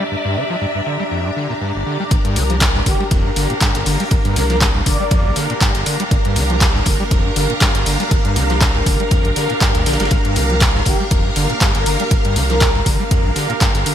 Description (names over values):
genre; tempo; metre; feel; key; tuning
acid house; 120 BPM; 4/4; swing 55% on 16ths; G dorian; A4 = 440 Hz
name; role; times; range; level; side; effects
string machine, full ensemble; sustained chords; 0.0-13.9 s; Bb4 to D5; -24 LUFS; equal; phaser, ensemble chorus, sidechain pumping
overdriven acid bass; riff; 0.0-13.9 s; G1 to G3; -22 LUFS; equal; analog chorus, ping-pong delay
warm studio string section; texture; 0.0-13.9 s; D4 to Bb5; -24 LUFS; equal; sidechain pumping
saturated sub bass; bass; 2.1-13.3 s; D1 to D2; -21 LUFS; equal; sidechain pumping
electronic kick drum; drums; 2.1-13.7 s; none; -17 LUFS; equal; none
punchy analog drum machine; drums; 2.1-13.9 s; handclaps, hi-hat; -21 LUFS; left 1 dB; gated reverb
raw garage drum kit; drums; 2.1-13.9 s; hi-hat, ride cymbal, snare drum; -28 LUFS; right 1 dB; none
breathy flute-like synth lead; melody; 2.9-5.4, 10.9-12.9 s; G4 to D5; -25 LUFS; equal; ensemble chorus, digital delay
room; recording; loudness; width
light reverb, small room reverb; bright 1980s-style digital production; -14 LUFS; side -10 dB against mid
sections
0.0-2.1 A section; 2.1-13.9 B section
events
drop 2.1-13.9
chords
0.0 Gm; 2.1 Gm7